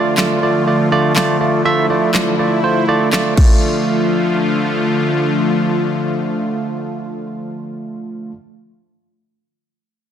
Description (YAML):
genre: dance-pop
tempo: 122 BPM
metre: 4/4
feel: straight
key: D minor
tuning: A4 = 440 Hz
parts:
  - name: barky tine electric piano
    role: accompaniment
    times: 0.0-8.4 s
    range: A3 to E5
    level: -18 LUFS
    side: right 3 dB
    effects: sidechain pumping
  - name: soft supersaw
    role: sustained chords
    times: 0.0-8.3 s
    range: D3 to F4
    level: -18 LUFS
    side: left 2 dB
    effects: phaser, sidechain pumping
  - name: pop drum kit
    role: drums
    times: 0.2-3.5 s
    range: crash cymbal, handclaps, kick drum, snare drum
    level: -16 LUFS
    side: equal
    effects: none
room: moderate plate reverb, RT60 1.6 s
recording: dense, heavily limited modern master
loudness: -13 LUFS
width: side -9 dB against mid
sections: 0.0-3.6 A section; 3.6-7.6 B section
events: none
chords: 0.0 Dm